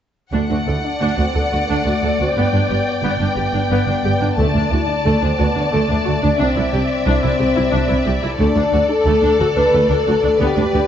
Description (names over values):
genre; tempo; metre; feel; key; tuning
cinematic, heroic adventure film score; 119 BPM (dotted quarters); 12/8; straight; D mixolydian; A4 = 440 Hz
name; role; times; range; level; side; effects
warm symphonic violin section; melody; 0.3-10.9 s; D5 to A5; -25 LUFS; left 2 dB; none
warm studio violin section; second line; 0.3-10.9 s; A4 to D5; -24 LUFS; left 2 dB; none
warm symphonic viola section; accompaniment; 0.3-10.8 s; A3 to A4; -24 LUFS; equal; none
dark French horn section; sustained chords; 0.3-10.9 s; A3 to B4; -20 LUFS; left 3 dB; none
rich symphonic double bass section; bass; 0.3-10.8 s; G1 to D2; -22 LUFS; right 2 dB; none
warm symphonic cello section; bass; 0.3-10.8 s; C2 to G2; -22 LUFS; right 2 dB; none
timpani; percussion; 4.4-4.9 s; D3; -26 LUFS; left 1 dB; none
room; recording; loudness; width
wet scoring stage reverb, RT60 1.7 s; nothing above 7.9 kHz; -15 LUFS; side -9 dB against mid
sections
0.3-10.9 A section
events
none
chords
0.3 D; 2.4 G; 4.4 D5; 6.4 Cadd9; 8.4 D5